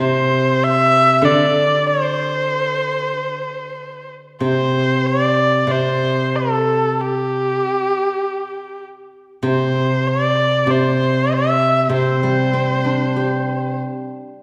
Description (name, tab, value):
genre	chinese traditional, Chinese chamber ensemble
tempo	96 BPM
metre	4/4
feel	rubato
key	C gong mode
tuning	A4 = 439 Hz
part	rich erhu	melody	0.0-13.8 s	G4 to E5	-20 LUFS	equal	none
part	steel-string zither	accompaniment	0.0-14.4 s	C3 to G4	-21 LUFS	equal	none
room	wet recital hall reverb, RT60 1.6 s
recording	heard from further back in the room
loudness	-18 LUFS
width	mono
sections	0.0-4.4 A section; 4.4-14.4 B section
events	none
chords	none